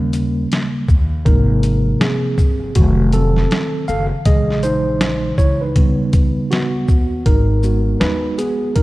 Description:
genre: hip hop, jazz-hop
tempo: 80 BPM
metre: 4/4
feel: swing 62% on 16ths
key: G# minor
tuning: A4 = 439 Hz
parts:
  - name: mellow tine electric piano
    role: accompaniment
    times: 0.0-8.8 s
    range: B#2 to F5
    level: -18 LUFS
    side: right 1 dB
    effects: medium stereo tremolo
  - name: upright bass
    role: bass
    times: 0.0-8.8 s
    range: F1 to D#2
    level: -19 LUFS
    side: equal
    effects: none
  - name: boom bap sampler-style drum kit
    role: drums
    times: 0.1-8.8 s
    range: hi-hat, kick drum, shaker, snare drum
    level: -16 LUFS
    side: equal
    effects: none
room: light reverb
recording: cassette tape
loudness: -14 LUFS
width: side -18 dB against mid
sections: 0.0-7.3 A section; 7.3-8.8 B section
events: tine electric piano solo 0.0-7.3, 7.3-8.8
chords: 0.0 D#7; 1.3 G#6; 2.8 F7b9; 4.3 A#m7b5; 5.8 D#7alt; 7.3 G#m9

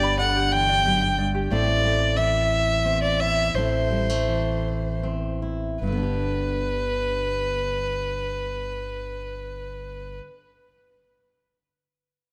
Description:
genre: folk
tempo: 49-61 BPM (dotted quarters)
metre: 6/8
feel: straight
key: G major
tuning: A4 = 440 Hz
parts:
  - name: dark fiddle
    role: melody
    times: 0.0-10.2 s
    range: B4 to G5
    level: -27 LUFS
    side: equal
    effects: digital delay
  - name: fingerpicked steel-string acoustic guitar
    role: accompaniment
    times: 0.0-10.4 s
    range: E2 to G4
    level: -31 LUFS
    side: equal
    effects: none
  - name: ukulele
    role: arpeggios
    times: 0.0-1.5 s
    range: G4 to B5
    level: -34 LUFS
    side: equal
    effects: digital delay
  - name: fingered electric bass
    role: bass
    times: 0.0-10.2 s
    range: G1 to A1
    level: -31 LUFS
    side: equal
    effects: none
room: light reverb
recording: none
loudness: -24 LUFS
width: mono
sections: 0.0-5.8 A section; 5.8-10.8 B section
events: slowing down 1.5-5.8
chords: 0.0 G; 1.5 Am; 5.8 G

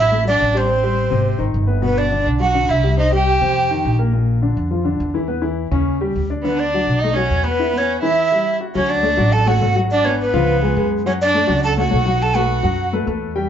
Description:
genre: jazz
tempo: 208 BPM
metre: 4/4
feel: straight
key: D major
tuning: A4 = 437 Hz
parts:
  - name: breathy hollow jazz flute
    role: melody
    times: 0.0-4.0, 6.5-12.9 s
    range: B4 to A5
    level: -19 LUFS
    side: right 1 dB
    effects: none
  - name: clear fiddle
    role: second line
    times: 0.0-4.0, 6.4-12.9 s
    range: B3 to A4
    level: -23 LUFS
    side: right 3 dB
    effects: none
  - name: warm baby grand piano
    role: accompaniment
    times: 0.0-13.5 s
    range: Bb2 to G5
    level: -21 LUFS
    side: left 3 dB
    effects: none
  - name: upright bass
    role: bass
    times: 0.0-13.5 s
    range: G1 to F#2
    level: -20 LUFS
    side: right 1 dB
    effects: none
room: wet club reverb, RT60 0.7 s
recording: heard from further back in the room, nothing above 7.6 kHz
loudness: -15 LUFS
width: side -9 dB against mid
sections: 0.0-8.7 A section; 8.7-13.5 B section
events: none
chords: 0.0 Dadd9; 0.7 Am7; 1.3 G#; 1.8 Gmaj7; 3.0 C5; 3.6 Fsus2; 4.1 Bb; 5.3 E5; 5.9 Eb7; 6.4 D6; 7.0 B5; 7.6 E5; 8.2 Emadd9; 8.7 Dmaj7; 9.9 G#m7b5; 10.5 C#7; 11.1 F#m; 12.2 B5

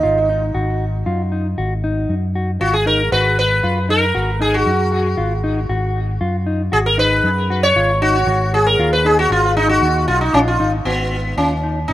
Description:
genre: progressive instrumental, band music in an uneven meter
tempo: 116 BPM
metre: 5/4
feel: straight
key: G# dorian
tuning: A4 = 441 Hz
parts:
  - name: sitar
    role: melody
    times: 0.0-11.9 s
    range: B3 to C#5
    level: -16 LUFS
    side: equal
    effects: ping-pong delay
  - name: mellow electric guitar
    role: arpeggios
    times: 0.0-11.9 s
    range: C#4 to F#4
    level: -24 LUFS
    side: left 2 dB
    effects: ping-pong delay
  - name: fingered electric bass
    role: bass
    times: 0.0-11.9 s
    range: G#1 to F#2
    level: -20 LUFS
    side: equal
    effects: none
room: light reverb, small room ambience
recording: rough home demo mix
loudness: -14 LUFS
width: side -14 dB against mid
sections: 0.0-10.9 A section; 10.9-11.9 B section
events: sitar solo 0.0-10.9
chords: 0.0 G#7(no3); 10.9 G#m7

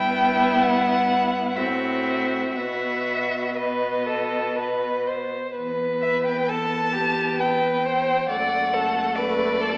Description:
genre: classical, slow romantic movement for string quartet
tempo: 58-69 BPM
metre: 3/4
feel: rubato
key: E minor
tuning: A4 = 440 Hz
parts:
  - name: rich violin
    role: melody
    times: 0.0-9.8 s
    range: D5 to A5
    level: -24 LUFS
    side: equal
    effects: none
  - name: rich violin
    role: second line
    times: 0.0-9.8 s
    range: E4 to D5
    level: -25 LUFS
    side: equal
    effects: none
  - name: rich viola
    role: accompaniment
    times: 0.0-9.8 s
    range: A3 to C4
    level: -28 LUFS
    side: equal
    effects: none
  - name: rich cello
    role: bass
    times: 0.0-9.8 s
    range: E2 to B2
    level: -31 LUFS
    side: equal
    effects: none
room: wet recital hall reverb, RT60 1.5 s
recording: AM radio sound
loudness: -20 LUFS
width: side -30 dB against mid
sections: 0.0-5.6 A section; 5.6-9.8 B section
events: none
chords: 0.0 Em/G; 1.6 F#m7b5/A; 2.5 B; 5.6 Em; 8.3 D/F#

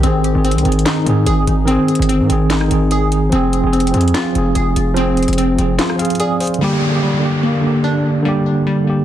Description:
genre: hip hop, trap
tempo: 146 BPM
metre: 4/4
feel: half-time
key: G phrygian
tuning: A4 = 440 Hz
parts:
  - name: mellow tine electric piano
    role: accompaniment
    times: 0.0-9.0 s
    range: D3 to F5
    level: -16 LUFS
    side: right 2 dB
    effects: medium stereo tremolo
  - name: glassy wavetable pluck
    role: arpeggios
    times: 0.0-9.0 s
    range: G3 to Ab4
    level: -19 LUFS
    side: left 3 dB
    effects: chorus, ping-pong delay
  - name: distorted 808-style bass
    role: bass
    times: 0.0-5.8 s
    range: F1 to Ab2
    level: -17 LUFS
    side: equal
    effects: distortion
  - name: trap drum kit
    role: drums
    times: 0.0-6.6 s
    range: handclaps, hi-hat, rim click, snare drum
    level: -21 LUFS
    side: equal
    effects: vintage 12-bit sampler grit
  - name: downlifter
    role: sound effects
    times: 6.6-9.0 s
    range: none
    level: -25 LUFS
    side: equal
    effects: none
room: digital ambience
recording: dense, heavily limited modern master, vinyl crackle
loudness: -13 LUFS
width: side -11 dB against mid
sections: 0.0-6.6 A section; 6.6-9.0 B section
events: kick muted 5.8-6.6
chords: 0.0 Ab; 3.3 Fm; 6.6 Gm

